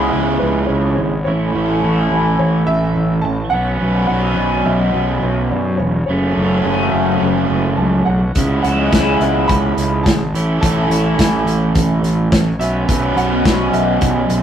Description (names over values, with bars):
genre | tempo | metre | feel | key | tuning
indie rock | 106 BPM | 4/4 | straight | A major | A4 = 439 Hz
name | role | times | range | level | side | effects
warm upright piano | melody | 0.0-14.4 s | B4 to B5 | -24 LUFS | right 1 dB | none
overdriven electric guitar | riff | 0.0-14.4 s | F#2 to E4 | -18 LUFS | right 3 dB | none
twangy electric guitar | riff | 0.0-14.4 s | F#2 to G#4 | -21 LUFS | left 3 dB | phaser
fuzz fingered electric bass | bass | 0.0-14.4 s | E1 to F#2 | -19 LUFS | left 1 dB | overdrive
loose indie drum kit | drums | 8.4-14.4 s | hi-hat, kick drum, snare drum | -17 LUFS | equal | none
room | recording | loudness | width
light reverb | rough rehearsal-room recording, lossy compression artefacts | -13 LUFS | side -9 dB against mid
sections
0.0-14.4 A section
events
none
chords
0.0 C#m7; 1.3 A; 3.5 Bsus2; 6.1 F#m; 8.4 C#m7; 10.3 A; 12.6 Bsus2